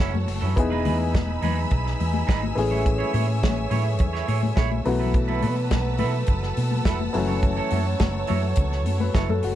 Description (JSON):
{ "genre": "disco", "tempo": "105 BPM", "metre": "4/4", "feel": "straight", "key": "F# dorian", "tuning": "A4 = 440 Hz", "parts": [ { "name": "clean electric guitar", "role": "accompaniment", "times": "0.0-9.5 s", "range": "C#4 to C#5", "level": "-31 LUFS", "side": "right 9 dB", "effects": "none" }, { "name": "warm concert grand piano", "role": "accompaniment", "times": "0.0-9.6 s", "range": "E3 to B4", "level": "-28 LUFS", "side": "left 4 dB", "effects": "none" }, { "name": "rich symphonic string section", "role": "sustained chords", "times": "0.0-9.6 s", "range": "D#4 to E6", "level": "-31 LUFS", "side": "right 2 dB", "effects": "none" }, { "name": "hollow-body short-scale fingered electric bass", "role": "bass", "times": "0.0-9.5 s", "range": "E1 to B2", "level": "-25 LUFS", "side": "equal", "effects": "none" }, { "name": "warm soul drum kit", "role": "drums", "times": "0.0-9.6 s", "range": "hi-hat, kick drum, snare drum", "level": "-26 LUFS", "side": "equal", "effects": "none" }, { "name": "congas", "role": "percussion", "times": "0.0-9.4 s", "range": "none", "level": "-31 LUFS", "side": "left 8 dB", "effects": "none" } ], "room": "small room ambience", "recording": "none", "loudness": "-21 LUFS", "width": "side -12 dB against mid", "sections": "0.0-9.6 A section", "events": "none", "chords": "0.0 F#m7; 0.6 Emaj7; 2.6 Amaj7; 4.9 B7sus4; 7.1 F#m7" }